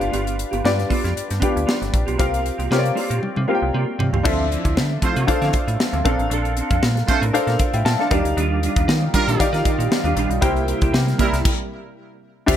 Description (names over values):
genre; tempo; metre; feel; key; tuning
polished 1980s jazz-funk pop; 117 BPM; 4/4; swing 54% on 16ths; unclear; A4 = 440 Hz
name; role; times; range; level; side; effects
clear concert grand piano; accompaniment; 0.0-12.6 s; C4 to A5; -23 LUFS; left 2 dB; analog chorus
mellow electric guitar; riff; 0.0-12.6 s; F3 to Bb4; -26 LUFS; right 4 dB; ensemble chorus
metallic FM bass; bass; 0.0-12.6 s; Gb1 to Eb3; -22 LUFS; equal; none
crisp fusion drum kit; drums; 0.0-12.6 s; crash cymbal, hi-hat, kick drum, snare drum, toms; -22 LUFS; equal; none
clear horn section; second line; 5.0-11.4 s; G3 to C5; -25 LUFS; right 4 dB; digital delay
soft string machine; sustained chords; 8.9-12.6 s; C3 to D5; -29 LUFS; equal; ensemble chorus
room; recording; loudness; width
studio ambience; none; -17 LUFS; side -10 dB against mid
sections
0.0-4.3 A section; 4.3-12.5 B section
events
drum fill 3.2-4.3; stop 11.4-12.5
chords
0.0 G7; 2.2 C7sus4; 4.3 Dm9; 6.1 Bbmaj9; 8.1 Ebmaj9; 10.4 C7